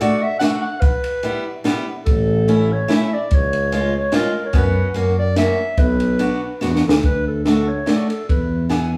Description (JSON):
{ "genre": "alpine folk, alpine dance band", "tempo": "145 BPM", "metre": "3/4", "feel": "swing 54% on 8ths", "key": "B minor", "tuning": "A4 = 440 Hz", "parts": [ { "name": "dark clarinet", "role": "melody", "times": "0.0-8.7 s", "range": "F#4 to F#5", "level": "-25 LUFS", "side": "equal", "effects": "none" }, { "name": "picked old ladder-braced acoustic guitar", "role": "accompaniment", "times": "0.0-8.9 s", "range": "G3 to G#4", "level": "-24 LUFS", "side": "equal", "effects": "none" }, { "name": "compact cocktail drum kit", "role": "drums", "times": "0.0-8.8 s", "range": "kick drum, ride cymbal, snare drum", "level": "-21 LUFS", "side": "equal", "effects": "none" }, { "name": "mellow tuba", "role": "bass", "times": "2.1-9.0 s", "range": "A1 to F#2", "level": "-22 LUFS", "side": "equal", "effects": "none" } ], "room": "wet large studio reverb, RT60 0.9 s", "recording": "band playing live in one room, studio reverb", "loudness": "-18 LUFS", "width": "mono", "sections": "0.0-7.0 A section; 7.0-9.0 B section", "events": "drum fill 6.6-7.0", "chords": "0.0 D; 0.8 Em; 2.1 A; 3.3 C#; 4.5 F#sus4; 4.9 F#7; 5.8 Bm; 7.0 D; 8.3 E" }